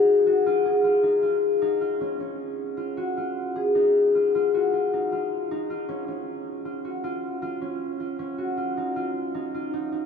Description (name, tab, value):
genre	contemporary instrumental, contemporary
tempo	156 BPM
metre	5/4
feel	straight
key	unclear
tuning	A4 = 435 Hz
part	concert harp	solo	0.0-10.1 s	Db4 to Ab4	-22 LUFS	left 2 dB	none
room	wet cathedral reverb, RT60 5.7 s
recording	in a vast, echoing space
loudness	-23 LUFS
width	side -6 dB against mid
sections	0.0-10.1 A section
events	none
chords	0.5 Db